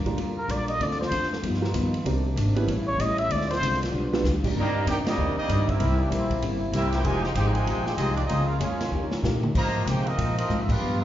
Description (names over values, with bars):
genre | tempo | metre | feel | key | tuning
jazz, big band swing | 192 BPM | 4/4 | swing 62% on 8ths | C minor | A4 = 441 Hz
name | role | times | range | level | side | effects
vintage hollow-body jazz guitar | accompaniment | 0.0-11.0 s | G2 to B4 | -30 LUFS | left 2 dB | none
mellow trombone section | sustained chords | 0.0-11.0 s | C3 to F4 | -34 LUFS | equal | none
upright bass | bass | 0.0-11.0 s | F1 to C3 | -27 LUFS | equal | none
warm grand piano | accompaniment | 0.1-4.8 s | Bb3 to D5 | -31 LUFS | right 4 dB | none
swinging big-band drum kit | drums | 0.1-10.7 s | crash cymbal, hi-hat, kick drum, ride cymbal, snare drum, toms | -32 LUFS | equal | none
trumpet with plunger mute | melody | 0.4-3.8 s | Bb4 to E5 | -27 LUFS | equal | none
warm trumpet section | melody | 4.6-11.0 s | Bb3 to Bb5 | -30 LUFS | right 1 dB | none
muted trombone section | second line | 4.6-11.0 s | C3 to G4 | -34 LUFS | right 2 dB | none
room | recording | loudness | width
wet recital hall reverb, RT60 1.3 s | heard from further back in the room, nothing above 7.5 kHz | -23 LUFS | side -12 dB against mid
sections
0.0-4.6 A section; 4.6-11.0 B section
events
muted trumpet solo 0.0-4.6; drum fill 3.9-4.2, 8.9-9.6; band accent 5.0, 10.6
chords
0.0 Gm7; 0.8 Dm7; 1.4 G7alt; 2.1 Cm9; 2.7 A7; 3.3 Dm7b5; 3.9 G7; 4.6 Cm9; 5.8 C7; 7.0 Fm9; 8.3 Bbm7; 8.9 Eb7; 9.6 Ab69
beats
0.18 0.49 | 0.81 1.12 1.43 1.74 | 2.05 2.37 2.68 2.99 | 3.30 3.62 3.93 4.24 | 4.55 4.86 5.18 5.49 | 5.80 6.11 6.43 6.74 | 7.05 7.36 7.67 7.99 | 8.30 8.61 8.93 9.24 | 9.55 9.87 10.18 10.49 | 10.80